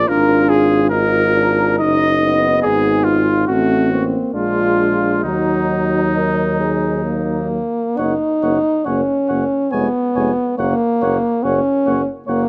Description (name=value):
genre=classical, brass quintet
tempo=62-73 BPM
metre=3/4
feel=rubato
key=Eb minor, F# major from 8.0 s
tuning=A4 = 440 Hz
part: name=clear trumpet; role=melody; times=0.0-12.4 s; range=Eb4 to G#5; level=-22 LUFS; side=equal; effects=none
part: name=mellow flugelhorn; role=second line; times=0.0-12.4 s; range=Eb4 to Eb5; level=-26 LUFS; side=equal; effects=none
part: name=clear French horn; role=accompaniment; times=0.0-12.5 s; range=A3 to Bb4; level=-22 LUFS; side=equal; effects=none
part: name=mellow euphonium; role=accompaniment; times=0.0-12.4 s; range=Gb3 to F4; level=-23 LUFS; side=equal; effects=none
part: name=warm tuba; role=bass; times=0.0-12.4 s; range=E#1 to Eb2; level=-24 LUFS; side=equal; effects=none
room=moderate large studio reverb, RT60 1.4 s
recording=close, detailed microphones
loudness=-17 LUFS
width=mono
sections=0.0-8.0 A section; 8.0-12.5 B section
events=none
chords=0.1 Bb7/Ab; 1.8 Ebm/Gb; 2.6 Fm7b5/Ab; 3.5 Am6; 4.3 Bb7; 5.2 Ebm; 8.0 F#; 9.7 C#7/E#; 10.6 F#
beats=| 0.09 0.92 1.80 | 2.65 3.49 4.35 | 5.24 6.15 7.05 | 7.98 8.86 9.72 | 10.58 11.44 12.28